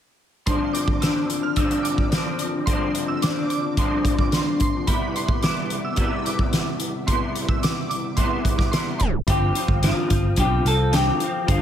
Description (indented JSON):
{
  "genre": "indie pop, bedroom pop",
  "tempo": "109 BPM",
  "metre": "4/4",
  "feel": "straight",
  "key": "unclear",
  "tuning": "A4 = 440 Hz",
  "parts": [
    { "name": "shimmering bell with halo", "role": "second line", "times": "0.5-9.1 s", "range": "B5 to F6", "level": "-30 LUFS", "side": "right 5 dB", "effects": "ensemble chorus, analog chorus, ping-pong delay" },
    { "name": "electric guitar through a small old amp", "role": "accompaniment", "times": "0.5-11.6 s", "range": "G2 to F4", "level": "-24 LUFS", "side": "left 2 dB", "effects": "ensemble chorus, warbly pitch drift" },
    { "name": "loose indie drum kit", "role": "drums", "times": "0.5-11.6 s", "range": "hi-hat, kick drum, snare drum", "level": "-23 LUFS", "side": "equal", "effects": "none" },
    { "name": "semi-hollow electric guitar", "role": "melody", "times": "9.0-11.6 s", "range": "E4 to A4", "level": "-24 LUFS", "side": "left 1 dB", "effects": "wide subtle chorus" },
    { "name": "vintage muted picked electric bass", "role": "bass", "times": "9.3-11.6 s", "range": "G1 to C2", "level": "-22 LUFS", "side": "equal", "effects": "none" }
  ],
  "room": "light reverb",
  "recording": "tape stop",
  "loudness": "-20 LUFS",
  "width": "side -10 dB against mid",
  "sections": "0.5-9.3 A section; 9.3-11.6 B section",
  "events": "tape stop 9.0",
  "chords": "0.5 G7sus4; 4.9 Cmaj7; 9.3 G7sus4",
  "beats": "| 0.47 1.02 1.57 2.12 | 2.67 3.22 3.77 4.32 | 4.87 5.42 5.97 6.53 | 7.08 7.63 8.18 8.73 | 9.28 9.83 10.38 10.93 | 11.48"
}